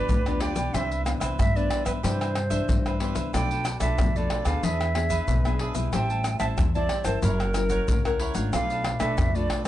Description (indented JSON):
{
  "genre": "samba and choro",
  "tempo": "92 BPM",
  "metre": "4/4",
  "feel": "straight",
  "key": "unclear",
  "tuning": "A4 = 441 Hz",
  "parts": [
    { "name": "hollow concert flute", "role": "melody", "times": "0.0-9.7 s", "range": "A#4 to G5", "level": "-30 LUFS", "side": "right 3 dB", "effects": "none" },
    { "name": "cavaquinho", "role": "accompaniment", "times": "0.0-9.7 s", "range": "D4 to A5", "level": "-34 LUFS", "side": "right 2 dB", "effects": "none" },
    { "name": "nylon-string guitar", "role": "accompaniment", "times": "0.0-9.7 s", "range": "G2 to Bb4", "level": "-32 LUFS", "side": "left 5 dB", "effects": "none" },
    { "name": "upright bass", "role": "bass", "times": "0.1-9.7 s", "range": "F#1 to G2", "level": "-28 LUFS", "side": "equal", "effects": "none" },
    { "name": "tube shaker, surdo, pandeiro and tamborim", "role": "percussion", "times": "0.1-9.7 s", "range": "none", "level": "-27 LUFS", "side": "left 1 dB", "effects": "none" }
  ],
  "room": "light reverb",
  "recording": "nothing above 10.4 kHz",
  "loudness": "-23 LUFS",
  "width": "side -13 dB against mid",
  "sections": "0.0-9.7 A section",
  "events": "none",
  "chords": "0.0 G7; 0.7 Cmaj9; 3.3 Bm7b5; 4.6 E7; 5.9 Am7; 7.2 F#7; 8.5 Bm7b5"
}